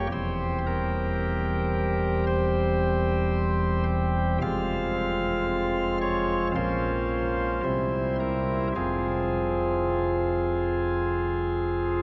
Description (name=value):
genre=classical, chorale-style piece for pipe organ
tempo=55 BPM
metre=4/4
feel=rubato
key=F minor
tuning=A4 = 440 Hz
part: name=chamber organ, cornet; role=solo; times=0.0-12.0 s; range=E1 to F5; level=-26 LUFS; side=equal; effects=none
room=wet cathedral reverb, RT60 6.7 s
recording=dark, warm production, nothing above 7.8 kHz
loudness=-26 LUFS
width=mono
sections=0.0-12.0 A section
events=none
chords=0.1 C7/E; 4.4 Fm; 6.6 Bbm; 7.6 C7; 8.8 Fm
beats=| 0.11 1.21 2.27 3.34 | 4.42 5.49 6.55 7.64 | 8.76 9.89 11.02